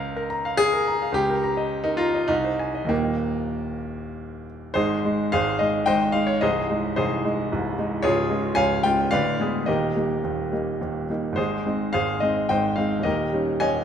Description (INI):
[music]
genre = classical, romantic character piece for solo piano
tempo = 94-116 BPM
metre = 3/4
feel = rubato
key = Ab major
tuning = A4 = 440 Hz
[part]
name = clear grand piano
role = solo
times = 0.0-13.8 s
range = C1 to Bb5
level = -21 LUFS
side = equal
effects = none
[sound]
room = moderate scoring stage reverb, RT60 2.0 s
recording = none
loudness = -21 LUFS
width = side -8 dB against mid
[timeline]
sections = 0.0-4.8 A section; 4.8-13.8 B section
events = none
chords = 0.0 Bbm/Db; 1.1 Eb7/Db; 2.3 Ab/C; 2.9 Eb; 4.8 Ab; 6.4 Ab/C; 8.0 Db; 9.1 Ddim7; 9.7 Eb; 11.4 Ab; 13.0 Eb7